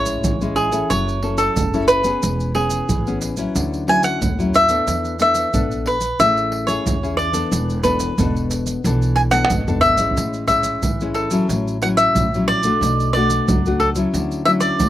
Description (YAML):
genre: samba and choro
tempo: 91 BPM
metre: 4/4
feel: straight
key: A major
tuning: A4 = 443 Hz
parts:
  - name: cavaquinho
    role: melody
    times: 0.0-14.9 s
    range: G#4 to G#5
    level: -18 LUFS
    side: equal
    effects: slapback echo
  - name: nylon-string guitar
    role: accompaniment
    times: 0.0-14.9 s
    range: A2 to A4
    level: -22 LUFS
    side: left 3 dB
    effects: none
  - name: upright bass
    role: bass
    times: 0.0-14.9 s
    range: E1 to E2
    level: -24 LUFS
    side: right 1 dB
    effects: none
  - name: maracas, pandeiro, surdo and tamborim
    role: percussion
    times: 0.1-14.9 s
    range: none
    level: -24 LUFS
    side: right 2 dB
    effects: none
room: little or no reverb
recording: recorded outdoors, with no room sound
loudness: -16 LUFS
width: side -13 dB against mid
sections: 0.0-14.9 A section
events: drum fill 9.3-10.2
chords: 0.0 Amaj7; 0.9 F#m7; 2.2 C#m7/E; 3.6 Dmaj9; 4.9 E7sus4; 6.2 Amaj7; 7.5 E7sus4; 10.2 Amaj7; 11.5 F#m7/A; 12.8 Bm7; 14.1 Dmaj9